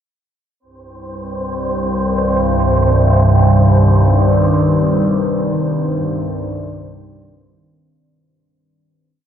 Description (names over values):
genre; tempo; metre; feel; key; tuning
dark ambient drone; free time; none; none; C minor; A4 = 440 Hz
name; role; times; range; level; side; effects
deep dark ambient pad; sustained chords; 1.8-8.0 s; Eb3 to D5; -20 LUFS; equal; chorus, built-in reverb
overtone-sweeping drone; drone; 1.3-8.1 s; C2 to G2; -14 LUFS; equal; chorus, built-in reverb, phaser
wind-like tuned noise texture; texture; 1.0-8.0 s; C4 to C5; -22 LUFS; right 2 dB; built-in reverb
quartz singing bowl; arpeggios; 4.1-9.3 s; Eb3 to D4; -27 LUFS; right 1 dB; diffuse ambient delay
room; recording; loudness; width
wet cathedral reverb, RT60 5.2 s; dark, warm production; -12 LUFS; side -9 dB against mid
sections
0.6-8.0 A section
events
fade-in on singing bowl 0.6-8.0; fade-out on synth texture 0.6-8.0; fade-out 4.3-8.0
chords
0.6 Cmadd9